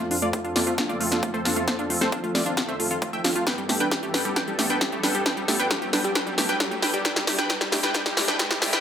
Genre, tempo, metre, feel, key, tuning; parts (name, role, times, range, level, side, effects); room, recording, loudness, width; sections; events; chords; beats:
uplifting trance; 134 BPM; 4/4; straight; A4 = 440 Hz
supersaw stab; melody; 0.0-8.8 s; F4 to G5; -27 LUFS; equal; sidechain pumping, low-pass filter, dub echo
filtered supersaw swell; sustained chords; 0.0-8.8 s; F2 to A4; -32 LUFS; equal; sidechain pumping
analog pluck; arpeggios; 0.0-8.8 s; G3 to A4; -31 LUFS; right 2 dB; chorus, sidechain pumping, dub echo
big-room dance drum kit; drums; 0.0-8.8 s; hi-hat, snare drum; -25 LUFS; equal; sidechain pumping on hats
riser; sound effects; 0.4-8.8 s; -36 LUFS; equal
electronic kick drum; drums; 0.3-8.5 s; -32 LUFS; left 1 dB
moderate digital room reverb, RT60 1.2 s, digital ambience; high-pass filter; -21 LUFS; side -8 dB against mid
0.0-8.8 A section
build-up 0.0-8.8; drum fill 0.0-8.8; filter sweep on supersaw synth 0.0-8.8; filter sweep on synth arpeggio sound 0.0-8.8; riser 0.4-8.8
0.0 F; 3.5 Gadd9; 7.1 Cadd9
0.33 0.78 1.23 | 1.68 2.12 2.57 3.02 | 3.47 3.92 4.36 4.81 | 5.26 5.71 6.16 6.60 | 7.05 7.50 7.95 8.39